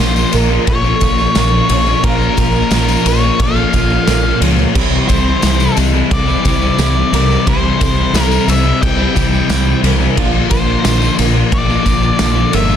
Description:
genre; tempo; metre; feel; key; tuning
rock, shoegaze and dream pop; 88 BPM; 4/4; straight; unclear; A4 = 440 Hz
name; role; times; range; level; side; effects
octave-fuzz lead guitar; melody; 0.0-12.8 s; Bb4 to G5; -19 LUFS; left 2 dB; distortion, digital delay
picked twelve-string acoustic guitar; arpeggios; 0.0-12.8 s; F4 to Db5; -25 LUFS; right 11 dB; ensemble chorus, digital delay
overdriven semi-hollow guitar; riff; 0.0-12.8 s; Bb2 to F4; -20 LUFS; right 12 dB; reverse reverb
thick fuzz guitar; riff; 0.0-12.8 s; Bb2 to C4; -17 LUFS; left 10 dB; distortion, analog chorus
growling fingered electric bass; bass; 0.0-12.8 s; G1 to Db2; -16 LUFS; equal; overdrive
tambourine; percussion; 0.2-12.8 s; none; -30 LUFS; left 9 dB; none
loose indie drum kit; drums; 0.3-12.7 s; crash cymbal, kick drum, ride cymbal, snare drum; -17 LUFS; equal; none
room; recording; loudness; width
small room reverb; dense, heavily limited modern master; -11 LUFS; side -9 dB against mid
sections
0.0-12.8 A section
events
none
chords
0.0 Bbm; 4.8 C; 10.2 Bb

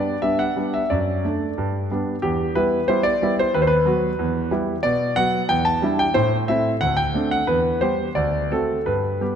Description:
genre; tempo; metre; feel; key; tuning
classical-period piano sonatina; 91 BPM; 2/4; rubato; unclear; A4 = 440 Hz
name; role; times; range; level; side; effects
clear concert grand piano; solo; 0.0-9.4 s; D2 to A5; -19 LUFS; equal; none
room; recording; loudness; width
wet concert hall reverb, RT60 2.1 s; none; -19 LUFS; side -8 dB against mid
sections
0.0-9.4 A section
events
none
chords
0.0 G; 0.9 D/F#; 1.6 G; 2.2 Em; 3.5 B/D#; 4.2 Em; 4.8 Bm; 5.5 Em7; 6.2 Am; 6.8 D5; 7.5 Em; 8.2 D7

